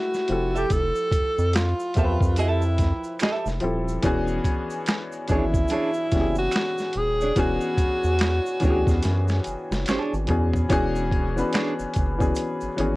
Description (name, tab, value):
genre	R&B, neo-soul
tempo	72 BPM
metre	4/4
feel	swing 60% on 16ths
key	unclear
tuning	A4 = 442 Hz
part	breathy tenor saxophone	melody	0.0-9.9 s	E4 to A4	-26 LUFS	equal	plate reverb
part	warm upright piano	accompaniment	0.0-13.0 s	E3 to E5	-27 LUFS	left 2 dB	plate reverb
part	boom bap sampler-style drum kit	drums	0.1-13.0 s	hi-hat, kick drum, snare drum, toms	-25 LUFS	equal	none
part	egg shaker and finger snaps	percussion	0.1-12.8 s	none	-40 LUFS	right 4 dB	none
part	round analog bass	bass	0.3-13.0 s	Eb1 to F#2	-25 LUFS	equal	none
part	nylon-string guitar	second line	0.5-11.7 s	D4 to E5	-28 LUFS	right 3 dB	plate reverb
room	light reverb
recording	worn, warbling old tape, cassette tape, warbly pitch drift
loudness	-21 LUFS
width	side -20 dB against mid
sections	0.0-10.7 A section; 10.7-13.0 B section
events	drum fill 9.0-10.7, 12.4-13.0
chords	0.3 Fmaj9; 4.0 E13